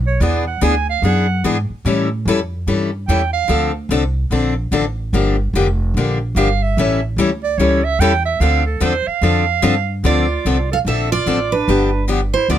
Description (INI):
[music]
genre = acoustic string swing (jazz manouche)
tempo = 147 BPM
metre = 4/4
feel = swing 63% on 8ths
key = D minor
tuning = A4 = 440 Hz
[part]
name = upright bass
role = bass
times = 0.0-12.6 s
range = F1 to A2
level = -18 LUFS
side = right 1 dB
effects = none
[part]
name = bright clarinet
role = second line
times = 0.1-3.7, 6.4-12.6 s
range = D4 to G#5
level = -20 LUFS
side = right 8 dB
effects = none
[part]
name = picked steel-string acoustic guitar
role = accompaniment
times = 0.2-12.6 s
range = D3 to A4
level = -18 LUFS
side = left 4 dB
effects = none
[part]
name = picked steel-string acoustic guitar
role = melody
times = 10.1-12.6 s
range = B4 to F5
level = -19 LUFS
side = right 5 dB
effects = none
[sound]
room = little or no reverb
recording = close, detailed microphones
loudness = -15 LUFS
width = side -11 dB against mid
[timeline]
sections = 0.0-10.0 A section; 10.0-12.6 B section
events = clarinet solo 0.0-10.0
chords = 0.2 E7; 1.9 A7; 3.5 Dm7; 5.1 Gm7; 6.8 A7; 8.4 Dm11; 10.0 Dm7; 11.7 G7